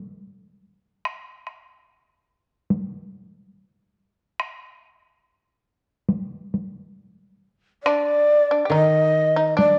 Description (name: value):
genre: japanese traditional, Japanese chamber music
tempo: 67-74 BPM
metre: 4/4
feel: rubato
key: unclear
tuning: A4 = 440 Hz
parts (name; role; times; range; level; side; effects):
- solo taiko drums; percussion; 1.1-9.8 s; none; -28 LUFS; equal; none
- breathy long shakuhachi; melody; 7.8-9.8 s; D5 to Eb5; -20 LUFS; equal; none
- shamisen; second line; 7.9-9.8 s; D4 to G4; -28 LUFS; equal; none
- koto; accompaniment; 8.7-9.8 s; Eb3; -25 LUFS; equal; none
room: moderate recital hall reverb, RT60 1.4 s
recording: worn, warbling old tape, cassette tape, warbly pitch drift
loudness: -22 LUFS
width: mono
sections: 0.0-7.9 A section; 7.9-9.8 B section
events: none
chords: none